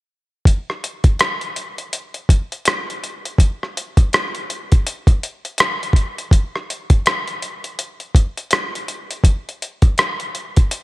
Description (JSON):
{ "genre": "R&B", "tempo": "82 BPM", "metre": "4/4", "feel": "swing 60% on 16ths", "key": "none", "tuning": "none", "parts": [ { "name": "dusty soul sampler-style drum kit", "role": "drums", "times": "0.5-10.8 s", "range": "hi-hat, kick drum, rim click", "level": "-15 LUFS", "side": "equal", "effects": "none" } ], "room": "light reverb", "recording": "none", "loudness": "-16 LUFS", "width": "side -19 dB against mid", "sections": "0.5-10.8 A section", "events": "none", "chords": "none" }